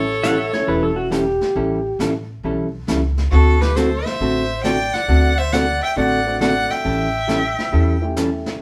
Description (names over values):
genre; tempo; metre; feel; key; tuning
country, western swing; 136 BPM; 4/4; swing 67% on 8ths; A mixolydian; A4 = 439 Hz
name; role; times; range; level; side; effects
clear fiddle; melody; 0.0-8.0 s; A4 to G5; -25 LUFS; equal; none
bright clarinet; second line; 0.0-8.0 s; F#4 to E5; -27 LUFS; equal; none
dark upright piano; accompaniment; 0.0-1.1, 6.3-8.6 s; A3 to A4; -30 LUFS; equal; none
hollow-body jazz guitar; accompaniment; 0.0-8.3 s; D3 to A4; -24 LUFS; equal; none
upright bass; bass; 0.0-8.4 s; E1 to E2; -23 LUFS; equal; none
pedal steel guitar; second line; 0.2-2.0 s; F#4 to F#5; -24 LUFS; equal; none
jazz brush drum kit; drums; 0.2-8.6 s; brushed snare drum, hi-hat, snare drum; -30 LUFS; equal; none
room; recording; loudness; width
wet studio reverb, RT60 0.6 s; band playing live in one room; -19 LUFS; mono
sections
0.0-8.6 A section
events
none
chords
0.0 A7; 3.3 D7; 6.8 A7